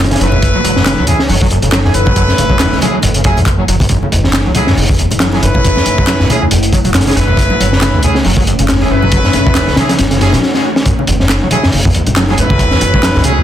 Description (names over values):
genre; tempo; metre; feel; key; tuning
breakbeat, breaks; 138 BPM; 4/4; swing 56% on 16ths; unclear; A4 = 440 Hz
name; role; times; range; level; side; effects
deep dark ambient pad; sustained chords; 0.0-13.4 s; E3 to A4; -20 LUFS; equal; chorus, built-in reverb, sidechain pumping
overdriven acid bass; riff; 0.0-13.4 s; E2 to F#3; -16 LUFS; equal; distortion, ensemble chorus, cassette tape, ping-pong delay
upright bass; bass; 0.0-13.4 s; F#1 to F#2; -16 LUFS; equal; none
crunchy breakbeat drum kit; drums; 0.0-13.4 s; hi-hat, kick drum, snare drum; -13 LUFS; equal; none
bright horn section; stabs; 0.1-13.4 s; A3 to B4; -16 LUFS; equal; vintage 12-bit sampler grit, ping-pong delay
congas and bongos; percussion; 0.3-13.3 s; none; -21 LUFS; left 2 dB; none
electronic handclaps; drums; 0.9-13.1 s; none; -19 LUFS; equal; none
swell; sound effects; 10.2-10.9 s; none; -23 LUFS; left 3 dB; none
room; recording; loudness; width
light reverb; dense, heavily limited modern master; -9 LUFS; side -11 dB against mid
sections
0.0-10.9 A section; 10.9-13.4 A section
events
swell 10.2-10.9; break 10.4-10.9; drum fill 10.4-10.9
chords
0.0 F#m7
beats
| 0.42 0.86 1.29 1.73 | 2.16 2.60 3.03 3.47 | 3.90 4.34 4.77 5.21 | 5.64 6.08 6.51 6.95 | 7.38 7.82 8.25 8.69 | 9.12 9.55 9.99 10.42 | 10.86 11.29 11.73 12.16 | 12.60 13.03